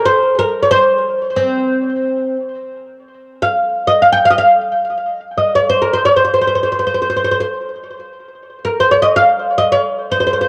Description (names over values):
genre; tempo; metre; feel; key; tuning
Arabic maqam ensemble; free time; none; none; C maqam bayati; A4 = 440 Hz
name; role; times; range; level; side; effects
oud; solo; 0.0-10.5 s; C4 to G5; -15 LUFS; equal; tape echo
room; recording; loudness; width
moderate spring reverb, RT60 2.0 s, studio reverb; home recording on cassette; -14 LUFS; mono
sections
0.0-3.0 A section; 3.0-10.5 A section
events
none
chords
none